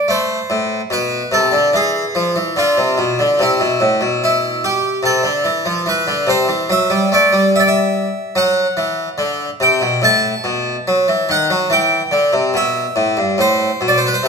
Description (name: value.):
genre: classical, baroque-style suite movement for harpsichord.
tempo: 72 BPM.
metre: 4/4.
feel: rubato.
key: A minor.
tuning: A4 = 437 Hz.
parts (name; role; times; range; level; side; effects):
harpsichord; solo; 0.0-14.3 s; G2 to A5; -13 LUFS; equal; none.
room: wet recital hall reverb, RT60 1.8 s.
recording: minimal, uncompressed stereo recording.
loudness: -13 LUFS.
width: side -5 dB against mid.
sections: 0.0-14.3 A section.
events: none.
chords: 0.1 Am; 1.7 E7; 3.4 Am; 6.7 F#7(no3); 10.0 B7(no3)/A; 11.7 Em; 13.4 Amadd9.